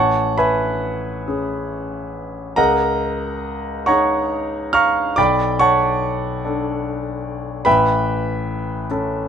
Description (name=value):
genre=classical, impressionist solo piano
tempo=44-49 BPM (dotted quarters)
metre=6/8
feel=rubato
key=unclear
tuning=A4 = 440 Hz
part: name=clear concert grand piano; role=solo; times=0.0-9.3 s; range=A1 to E#6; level=-17 LUFS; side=right 1 dB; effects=none
room=little or no reverb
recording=close, detailed microphones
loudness=-17 LUFS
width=side -8 dB against mid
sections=0.0-9.3 A section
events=none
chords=0.0 Amaj9; 2.6 C#add9; 5.2 Bm7; 7.7 Aadd9